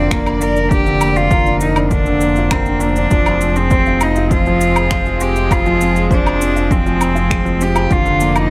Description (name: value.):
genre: piano and strings electronica.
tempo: 100 BPM.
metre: 4/4.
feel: straight.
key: F dorian.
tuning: A4 = 440 Hz.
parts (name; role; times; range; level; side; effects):
rich cello; melody; 0.0-8.5 s; Bb3 to Bb4; -20 LUFS; equal; none.
warm studio string section; sustained chords; 0.0-8.5 s; F3 to D5; -26 LUFS; equal; sidechain pumping.
dark baby grand piano; riff; 0.0-8.5 s; D3 to C5; -21 LUFS; equal; none.
round analog bass; bass; 0.0-8.5 s; F1; -22 LUFS; equal; sidechain pumping.
electronic finger snaps, shaker and woodblock; drums; 0.1-8.5 s; none; -25 LUFS; equal; none.
electronic kick drum; drums; 0.1-8.0 s; none; -20 LUFS; equal; none.
room: light reverb.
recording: none.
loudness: -15 LUFS.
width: mono.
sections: 0.0-8.5 A section.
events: none.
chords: 0.0 Bb/F; 3.1 Fm; 7.9 Bb/F.